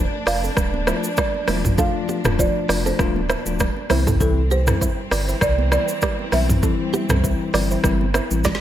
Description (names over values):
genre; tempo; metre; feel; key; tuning
afrobeats; 99 BPM; 4/4; swing 55% on 16ths; unclear; A4 = 440 Hz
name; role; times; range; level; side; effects
folk marimba with medium mallets; melody; 0.0-8.4 s; A4 to F5; -26 LUFS; right 2 dB; digital delay
warm studio string section; sustained chords; 0.0-8.6 s; B2 to D4; -30 LUFS; right 1 dB; sidechain pumping
direct-recorded clean electric guitar; riff; 0.0-8.5 s; B3 to D5; -28 LUFS; right 5 dB; tremolo, digital delay
sub bass with octave; bass; 0.0-8.5 s; D1 to C2; -22 LUFS; equal; none
deep house drum kit; drums; 0.3-8.6 s; hi-hat, kick drum, rim click, shaker, snare drum, toms; -22 LUFS; equal; gated reverb
congas; percussion; 0.6-8.6 s; none; -31 LUFS; right 10 dB; none
bell-like tine electric piano; accompaniment; 0.9-8.5 s; E3 to F4; -25 LUFS; left 7 dB; none
room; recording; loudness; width
light reverb; bright 1980s-style digital production; -18 LUFS; side -11 dB against mid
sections
0.0-8.6 A section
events
drum fill 8.4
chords
0.0 Dm; 3.9 C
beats
0.57 1.18 | 1.78 2.39 2.99 3.60 | 4.21 4.81 5.42 6.02 | 6.63 7.24 7.84 8.45